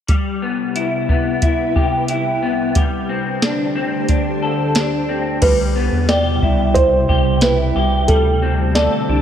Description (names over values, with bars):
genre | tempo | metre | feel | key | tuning
dream pop | 90 BPM | 4/4 | straight | C major | A4 = 440 Hz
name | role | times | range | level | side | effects
ethereal airy pad | sustained chords | 0.7-9.2 s | C2 to C5 | -23 LUFS | right 1 dB | ensemble chorus, built-in reverb
electric guitar through a small old amp | arpeggios | 0.1-9.2 s | G3 to A4 | -19 LUFS | left 3 dB | ensemble chorus, digital delay
soft vintage rhythm box | drums | 0.1-8.9 s | crash cymbal, hi-hat, kick drum, snare drum | -18 LUFS | equal | none
felt-muted upright piano | melody | 5.4-9.2 s | A4 to D5 | -18 LUFS | right 2 dB | digital delay
round analog bass | bass | 5.4-9.2 s | C2 to E2 | -19 LUFS | equal | none
room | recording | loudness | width
moderate scoring stage reverb, RT60 1.8 s, digital ambience | none | -14 LUFS | side -9 dB against mid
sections
0.1-5.4 A section; 5.4-9.2 B section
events
none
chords
0.1 Cmaj7; 2.8 D7sus4; 5.4 Cmaj7; 8.1 D7sus4